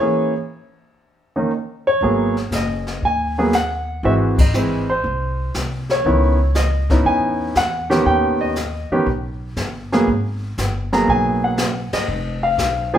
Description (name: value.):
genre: jazz piano trio.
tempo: 119 BPM.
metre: 4/4.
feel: swing 69% on 8ths.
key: G# minor.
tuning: A4 = 435 Hz.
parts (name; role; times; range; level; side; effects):
warm baby grand piano; melody; 0.0-13.0 s; D#3 to A#5; -18 LUFS; equal; none.
upright bass; bass; 2.0-13.0 s; F1 to E2; -23 LUFS; equal; none.
jazz brush drum kit; drums; 2.0-13.0 s; brushed snare drum, crash cymbal, hi-hat, kick drum, ride cymbal, snare drum; -22 LUFS; left 1 dB; none.
room: moderate large studio reverb, RT60 0.9 s.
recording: band playing live in one room.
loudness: -17 LUFS.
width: side -10 dB against mid.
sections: 0.0-2.0 A section; 2.0-13.0 B section.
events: break 0.0-2.0; band accent 4.3, 11.8.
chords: 0.0 A#m7b5; 1.0 D#5; 2.0 G#m9; 4.0 G#(b13); 6.0 C#m9; 8.1 D#7b13; 10.1 G#m9; 12.1 F(b5, no3).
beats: | 0.01 0.52 1.02 1.52 | 2.02 2.53 3.03 3.53 | 4.04 4.54 5.04 5.55 | 6.05 6.55 7.06 7.56 | 8.06 8.57 9.07 9.57 | 10.08 10.58 11.09 11.59 | 12.09 12.59.